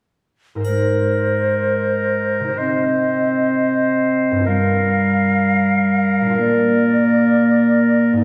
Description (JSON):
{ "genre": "cinematic, heroic adventure film score", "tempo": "126 BPM", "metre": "4/4", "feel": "straight", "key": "Ab lydian", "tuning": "A4 = 440 Hz", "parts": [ { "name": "hollow concert flute", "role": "second line", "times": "0.6-8.0 s", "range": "C5 to F5", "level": "-23 LUFS", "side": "equal", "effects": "none" }, { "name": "warm oboe", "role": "second line", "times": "0.6-8.1 s", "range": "Bb4 to C5", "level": "-26 LUFS", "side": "equal", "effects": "none" }, { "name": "concert harp", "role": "arpeggios", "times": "0.6-8.2 s", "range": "G2 to C5", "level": "-25 LUFS", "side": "equal", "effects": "none" }, { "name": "triangle", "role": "percussion", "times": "0.6-1.6 s", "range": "none", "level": "-49 LUFS", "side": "equal", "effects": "none" }, { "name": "dark clarinet", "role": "second line", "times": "0.7-8.2 s", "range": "G3 to C4", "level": "-20 LUFS", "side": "equal", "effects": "none" } ], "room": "wet scoring stage reverb, RT60 1.6 s", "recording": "heard from further back in the room", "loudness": "-17 LUFS", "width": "mono", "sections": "0.6-8.2 A section", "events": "build-up 0.6-8.2", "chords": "0.6 Abadd9; 2.6 Cm; 4.5 Gm7; 6.4 Bb" }